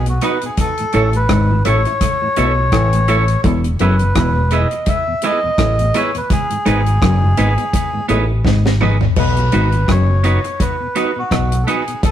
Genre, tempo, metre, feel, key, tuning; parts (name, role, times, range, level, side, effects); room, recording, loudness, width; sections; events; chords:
roots reggae; 84 BPM; 4/4; swing 56% on 16ths; B mixolydian; A4 = 439 Hz
melodica; melody; 0.0-12.1 s; F#4 to E5; -20 LUFS; equal
muted clav; riff; 0.0-11.5 s; E2 to B2; -21 LUFS; left 2 dB; auto-wah
deep dub fingered electric bass; bass; 0.0-11.6 s; E1 to B1; -16 LUFS; equal
mellow tonewheel organ; accompaniment; 0.1-11.9 s; E2 to E4; -27 LUFS; left 1 dB; slow rotary speaker, tape echo
deep reggae drum kit; drums; 0.1-12.1 s; crash cymbal, hi-hat, kick drum, rim click, snare drum, toms; -19 LUFS; equal; tape echo
electric guitar at the edge of break-up; accompaniment; 0.2-11.8 s; B3 to C#5; -22 LUFS; right 5 dB; tape echo
light reverb; rough rehearsal-room recording; -13 LUFS; side -10 dB against mid
0.0-9.2 A section; 9.2-12.1 B section
melodica solo 0.0-9.2; drum fill 8.5-9.2
0.0 B; 0.6 A; 3.4 E; 6.3 G#m; 9.2 B